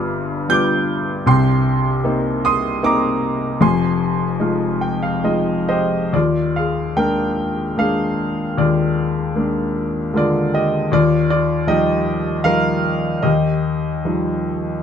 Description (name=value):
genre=classical, lyrical solo piano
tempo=68-79 BPM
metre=3/4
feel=rubato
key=unclear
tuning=A4 = 439 Hz
part: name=clear grand piano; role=solo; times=0.0-14.8 s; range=F1 to G6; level=-16 LUFS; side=left 1 dB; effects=none
room=light reverb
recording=close, detailed microphones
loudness=-16 LUFS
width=side -8 dB against mid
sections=0.0-6.1 A section; 6.1-14.8 B section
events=grand piano fill 4.4-6.1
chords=0.0 G7; 1.3 Cm7; 3.6 Fm7; 6.1 Bb7/Eb; 10.9 Ebadd9